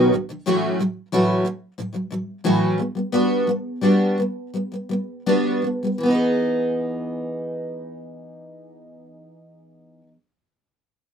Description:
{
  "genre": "pop",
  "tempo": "78-92 BPM",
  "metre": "4/4",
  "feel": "straight",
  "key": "E major",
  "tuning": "A4 = 438 Hz",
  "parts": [
    { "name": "picked steel-string acoustic guitar", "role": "accompaniment", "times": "0.0-10.2 s", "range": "A2 to G#4", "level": "-20 LUFS", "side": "equal", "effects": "double-tracked left and right" }
  ],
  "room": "light reverb",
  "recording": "rough home demo mix",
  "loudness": "-20 LUFS",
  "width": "side -8 dB against mid",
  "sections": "0.0-6.0 A section; 6.0-9.1 B section",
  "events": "slowing down 0.5-6.0",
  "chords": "0.5 F#m7/A; 2.8 Gmaj7; 6.0 Emaj7"
}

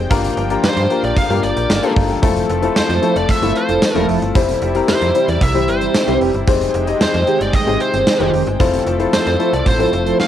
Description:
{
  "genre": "1980s-style pop",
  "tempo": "113 BPM",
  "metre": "4/4",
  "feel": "straight",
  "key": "F major",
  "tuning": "A4 = 440 Hz",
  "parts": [
    { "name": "clear concert grand piano", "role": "accompaniment", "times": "0.0-10.3 s", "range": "G2 to Eb5", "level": "-18 LUFS", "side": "left 7 dB", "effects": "cassette tape" },
    { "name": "lush unison pad", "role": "sustained chords", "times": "0.0-10.3 s", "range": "C3 to G5", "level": "-25 LUFS", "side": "right 2 dB", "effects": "chorus, cassette tape" },
    { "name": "slap-like FM bass", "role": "bass", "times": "0.0-10.1 s", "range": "E1 to G2", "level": "-22 LUFS", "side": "right 1 dB", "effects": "none" },
    { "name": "gated 80s drum kit", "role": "drums", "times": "0.1-10.3 s", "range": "hi-hat, kick drum, snare drum, tambourine", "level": "-18 LUFS", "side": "right 1 dB", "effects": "cassette tape" },
    { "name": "bluesy overdriven lead guitar", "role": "melody", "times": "0.6-10.3 s", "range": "C5 to F5", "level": "-20 LUFS", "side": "right 1 dB", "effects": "distortion, cassette tape" },
    { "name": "mellow synth brass", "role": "stabs", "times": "3.0-10.2 s", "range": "Eb3 to A4", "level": "-22 LUFS", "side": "right 10 dB", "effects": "chorus, cassette tape, tape echo" }
  ],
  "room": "moderate booth ambience, RT60 0.2 s",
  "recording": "home recording on cassette",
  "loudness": "-13 LUFS",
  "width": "side -10 dB against mid",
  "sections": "0.0-10.3 A section",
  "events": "none",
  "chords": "0.1 Gm7; 2.2 Fmaj7; 4.4 C/F; 6.5 Abmaj7/F; 8.6 Fmaj7"
}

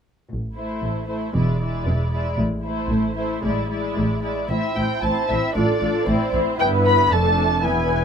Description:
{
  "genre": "quick classical-period movement for string orchestra",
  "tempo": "114 BPM",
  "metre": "2/4",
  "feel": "straight",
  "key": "A minor",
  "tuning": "A4 = 439 Hz",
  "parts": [
    { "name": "muted studio double bass section", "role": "bass", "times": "0.3-8.0 s", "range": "E1 to A1", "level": "-26 LUFS", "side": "right 1 dB", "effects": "none" },
    { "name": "muted symphonic cello section", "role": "bass", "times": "0.3-8.0 s", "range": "E2 to A2", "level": "-25 LUFS", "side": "equal", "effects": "none" },
    { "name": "muted symphonic violin section", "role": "melody", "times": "0.6-8.0 s", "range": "C5 to B5", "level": "-25 LUFS", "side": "left 1 dB", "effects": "none" },
    { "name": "muted symphonic violin section", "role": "second line", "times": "0.6-8.0 s", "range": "E4 to C5", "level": "-26 LUFS", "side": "equal", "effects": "none" },
    { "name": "muted studio viola section", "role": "accompaniment", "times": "0.6-8.0 s", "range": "G#3 to F4", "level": "-26 LUFS", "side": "equal", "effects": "none" }
  ],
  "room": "moderate studio reverb, RT60 0.6 s",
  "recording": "minimal, uncompressed stereo recording",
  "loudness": "-19 LUFS",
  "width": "side -7 dB against mid",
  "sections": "0.3-4.5 A section; 4.5-8.0 B section",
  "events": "none",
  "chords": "0.3 Am; 1.3 E7; 2.4 Am; 3.4 E7/A; 4.5 Am; 5.6 Dm/A; 6.1 Am; 6.6 Em/G; 7.1 Dm/F"
}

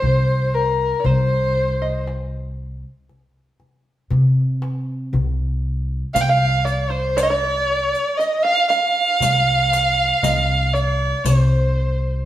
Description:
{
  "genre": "Arabic maqam ensemble",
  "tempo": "118 BPM (eighths)",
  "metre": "10/8",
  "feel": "straight",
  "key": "C maqam bayati",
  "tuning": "A4 = 441 Hz",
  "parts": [
    { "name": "dark violin", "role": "melody", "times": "0.0-12.3 s", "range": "Bb4 to G5", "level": "-19 LUFS", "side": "right 1 dB", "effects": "none" },
    { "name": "open-back banjo", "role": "second line", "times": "0.0-12.2 s", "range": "C5 to F5", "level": "-24 LUFS", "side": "right 2 dB", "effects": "none" },
    { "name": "upright bass", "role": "bass", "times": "0.0-12.3 s", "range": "C2 to C3", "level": "-21 LUFS", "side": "equal", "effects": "none" },
    { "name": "darbuka", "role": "percussion", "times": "0.0-11.5 s", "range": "none", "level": "-24 LUFS", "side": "left 2 dB", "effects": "none" },
    { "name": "riq", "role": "percussion", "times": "6.2-11.5 s", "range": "none", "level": "-31 LUFS", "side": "left 4 dB", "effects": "none" }
  ],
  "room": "wet stone room reverb, RT60 1.3 s",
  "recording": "band playing live in one room",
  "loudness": "-16 LUFS",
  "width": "side -13 dB against mid",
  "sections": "0.0-12.3 A section",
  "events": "none",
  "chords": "none"
}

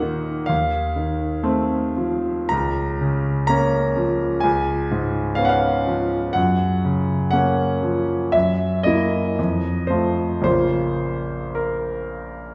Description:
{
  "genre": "classical, romantic nocturne for solo piano",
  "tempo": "52-65 BPM",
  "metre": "4/4",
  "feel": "rubato",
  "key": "Bb minor",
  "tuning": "A4 = 440 Hz",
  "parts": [
    { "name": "clear grand piano", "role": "solo", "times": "0.0-12.5 s", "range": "Bb1 to Bb5", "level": "-21 LUFS", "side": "equal", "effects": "none" }
  ],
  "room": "wet recital hall reverb, RT60 1.6 s",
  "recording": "recorded in a church or concert hall",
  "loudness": "-21 LUFS",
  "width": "mono",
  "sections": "0.0-12.5 A section",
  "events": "none",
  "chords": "0.0 Ebm; 0.5 F7/Eb; 2.5 Bbm/Db; 4.4 Db7; 6.4 Gbmaj7; 8.3 Gb7; 9.4 F7; 10.5 Bbm"
}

